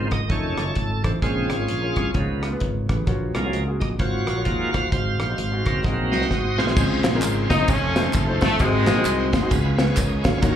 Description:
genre	uptempo gospel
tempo	130 BPM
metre	4/4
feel	swing 60% on 8ths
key	Db major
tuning	A4 = 440 Hz
part	warm concert grand piano	accompaniment	0.0-10.6 s	Ab2 to F5	-28 LUFS	left 2 dB	slapback echo
part	bright tonewheel organ	sustained chords	0.0-10.6 s	Db3 to F5	-26 LUFS	right 3 dB	slow rotary speaker, overdrive
part	fingered electric bass	bass	0.0-10.6 s	F1 to Eb2	-25 LUFS	equal	none
part	modern studio drum kit	drums	0.1-10.6 s	crash cymbal, hi-hat, kick drum, ride cymbal, rim click, snare drum	-24 LUFS	equal	none
part	tambourine and handclaps	percussion	6.8-10.6 s	none	-34 LUFS	equal	none
part	warm horn section	melody	7.5-9.5 s	C3 to Eb4	-22 LUFS	left 2 dB	slapback echo
room	light reverb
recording	live gig heard through the venue's PA, club reverb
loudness	-19 LUFS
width	side -10 dB against mid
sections	0.0-6.8 A section; 6.8-10.6 B section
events	tonewheel organ solo 0.0-6.8; drum fill 5.8-6.8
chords	0.3 F7b13; 1.2 Bbm7; 2.1 Db7; 3.1 Gbmaj7/Bb; 4.9 Ab7; 6.8 Dbmaj7; 7.7 F7b13; 8.6 Ab7; 9.5 Db7

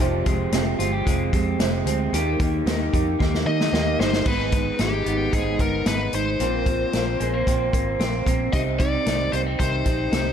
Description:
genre	jangly indie pop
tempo	112 BPM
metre	4/4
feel	straight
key	unclear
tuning	A4 = 440 Hz
part	picked steel-string acoustic guitar	accompaniment	0.0-10.3 s	F2 to Bb4	-26 LUFS	right 6 dB	none
part	electric guitar through a small old amp	arpeggios	0.0-10.3 s	Ab2 to G4	-28 LUFS	left 3 dB	none
part	vintage muted fingered electric bass	bass	0.0-10.3 s	F1 to Eb3	-27 LUFS	equal	none
part	vintage drum kit	drums	0.0-10.3 s	crash cymbal, hi-hat, kick drum, snare drum	-25 LUFS	equal	none
part	bluesy overdriven lead guitar	melody	3.5-10.3 s	G4 to Eb5	-27 LUFS	left 3 dB	distortion
room	moderate lush hall reverb, RT60 2.0 s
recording	big arena sound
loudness	-20 LUFS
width	side -8 dB against mid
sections	0.0-4.3 A section; 4.3-10.3 B section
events	drum fill 3.2-4.3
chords	0.0 Fmadd9; 2.1 Eb; 4.3 Abm; 6.4 Bbsus2; 8.5 Cm

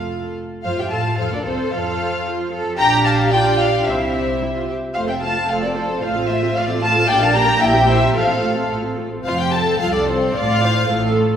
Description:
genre	quick classical-period movement for string orchestra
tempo	111 BPM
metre	2/4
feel	rubato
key	F major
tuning	A4 = 440 Hz
part	warm studio violin section	melody	0.0-11.2 s	A4 to A5	-24 LUFS	left 3 dB	none
part	warm studio violin section	second line	0.0-11.1 s	C4 to Bb5	-20 LUFS	left 1 dB	none
part	warm studio viola section	accompaniment	0.0-11.4 s	A3 to D5	-23 LUFS	right 1 dB	none
part	dark studio double bass section	bass	0.0-11.3 s	F1 to A2	-24 LUFS	right 2 dB	none
part	warm studio cello section	bass	0.0-11.3 s	C2 to A4	-24 LUFS	right 2 dB	none
room	wet concert hall reverb, RT60 1.9 s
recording	recorded in a church or concert hall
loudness	-16 LUFS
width	side -8 dB against mid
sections	0.6-9.3 A section; 9.3-11.4 B section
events	none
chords	0.0 F; 2.8 Gm/Bb; 3.9 C; 5.0 F; 6.0 F/A; 7.1 Gm/Bb; 7.6 C7/Bb; 8.2 F/A; 9.3 F; 10.4 F/A

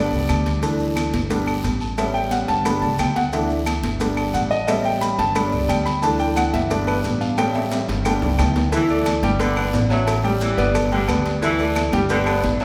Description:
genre	latin, salsa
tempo	178 BPM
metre	4/4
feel	straight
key	unclear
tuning	A4 = 440 Hz
part	clear concert grand piano	accompaniment	0.0-12.6 s	E3 to B5	-23 LUFS	equal	none
part	upright bass	bass	0.0-12.6 s	G1 to D2	-26 LUFS	equal	none
part	congas	percussion	0.1-12.6 s	none	-32 LUFS	equal	none
part	maracas	percussion	0.1-12.6 s	none	-41 LUFS	equal	none
part	agogo bells and timbales	percussion	0.3-12.6 s	none	-32 LUFS	equal	none
part	claves	percussion	0.3-12.4 s	none	-38 LUFS	equal	none
part	cowbell	percussion	0.3-12.6 s	none	-34 LUFS	equal	none
part	guiro	percussion	0.3-12.6 s	none	-40 LUFS	equal	none
part	edgy saxophone section	second line	8.7-12.6 s	D3 to F#3	-29 LUFS	equal	none
room	wet recital hall reverb, RT60 1.8 s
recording	recorded in a church or concert hall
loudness	-20 LUFS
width	mono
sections	0.0-8.7 A section; 8.7-12.6 B section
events	grand piano solo 0.0-8.7; drum fill 7.4-8.7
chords	0.0 G; 0.6 Dsus2; 1.3 G; 2.0 A7; 2.7 G; 3.3 Dsus2; 4.0 G; 4.7 A7; 5.4 G; 6.0 Dsus2; 6.7 G; 7.4 A7; 8.1 G; 8.7 Dsus2; 9.4 G; 11.4 Dsus2; 12.1 G

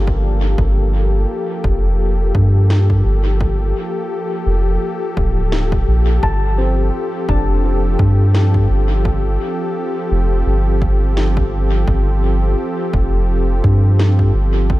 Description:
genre	ambient dub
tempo	85 BPM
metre	4/4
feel	swing 56% on 16ths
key	unclear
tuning	A4 = 439 Hz
part	warm analog pad	sustained chords	0.0-14.8 s	F3 to A4	-21 LUFS	left 1 dB	chorus
part	felt-muted upright piano	arpeggios	0.0-14.8 s	C4 to A5	-27 LUFS	left 3 dB	low-pass filter, tape echo
part	soft dub sub bass	bass	0.0-14.8 s	D1 to G2	-14 LUFS	equal	none
part	electronic kick drum	drums	0.1-14.8 s	none	-21 LUFS	equal	overdrive
part	electronic snare drum	drums	2.7-14.2 s	none	-29 LUFS	equal	dub echo
room	little or no reverb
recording	echo-heavy mix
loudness	-14 LUFS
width	side -17 dB against mid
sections	0.0-14.8 A section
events	none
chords	0.0 Gm9; 6.2 Fadd9

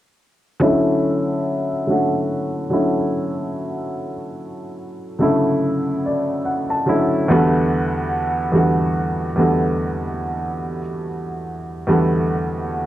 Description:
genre	hip hop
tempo	72 BPM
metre	4/4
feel	swing 59% on 16ths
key	unclear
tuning	A4 = 439 Hz
part	warm upright piano	accompaniment	0.6-12.9 s	E2 to A5	-18 LUFS	equal	cassette tape, low-pass filter
room	wet studio reverb, RT60 0.5 s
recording	none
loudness	-18 LUFS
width	side -13 dB against mid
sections	0.6-12.9 A section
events	filter sweep on upright piano 0.6-12.9; upright piano fill 5.6-7.3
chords	0.6 Dmaj9; 7.3 Em11

